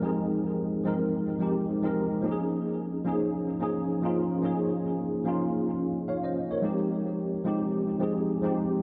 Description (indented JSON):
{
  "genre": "amapiano",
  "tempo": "109 BPM",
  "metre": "4/4",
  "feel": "swing 55% on 16ths",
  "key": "F minor",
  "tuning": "A4 = 439 Hz",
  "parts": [
    { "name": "tine electric piano", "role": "solo", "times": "0.0-8.8 s", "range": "F3 to F5", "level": "-29 LUFS", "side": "equal", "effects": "ensemble chorus, delay" }
  ],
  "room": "wet lush hall reverb, RT60 2.9 s",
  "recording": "dreamy mix soaked in reverb",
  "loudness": "-29 LUFS",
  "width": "mono",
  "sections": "0.0-8.8 A section",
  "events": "none",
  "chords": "0.0 Fm9; 2.2 Eb9sus4"
}